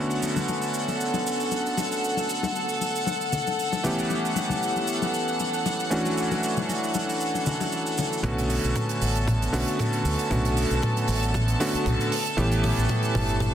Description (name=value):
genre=nu-disco, nu disco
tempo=116 BPM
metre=4/4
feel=swing 54% on 16ths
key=B minor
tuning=A4 = 440 Hz
part: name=clear electric grand piano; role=accompaniment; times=0.0-13.5 s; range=D3 to G4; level=-27 LUFS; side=equal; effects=sidechain pumping, tape echo
part: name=rich studio violin section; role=sustained chords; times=0.0-13.5 s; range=A4 to A5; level=-29 LUFS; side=left 1 dB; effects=sidechain pumping
part: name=tight funk drum kit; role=drums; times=0.1-13.5 s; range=cabasa, hi-hat, toms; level=-30 LUFS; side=right 1 dB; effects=none
part: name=congas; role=percussion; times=0.2-8.1 s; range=none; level=-32 LUFS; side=left 4 dB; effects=none
part: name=fingered electric bass with an envelope filter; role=bass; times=8.2-13.5 s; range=G1 to D2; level=-26 LUFS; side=equal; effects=none
part: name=electronic kick drum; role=drums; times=8.2-13.5 s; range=none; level=-40 LUFS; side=right 1 dB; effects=none
room=moderate echo chamber reverb, RT60 2.5 s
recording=dense, heavily limited modern master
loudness=-23 LUFS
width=side -10 dB against mid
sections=0.0-8.2 A section; 8.2-13.5 B section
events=build-up 8.2-13.5; drum fill 8.2-13.5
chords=0.0 Bm9; 3.8 A7; 5.9 Dmaj9; 8.2 Bm9; 12.1 A7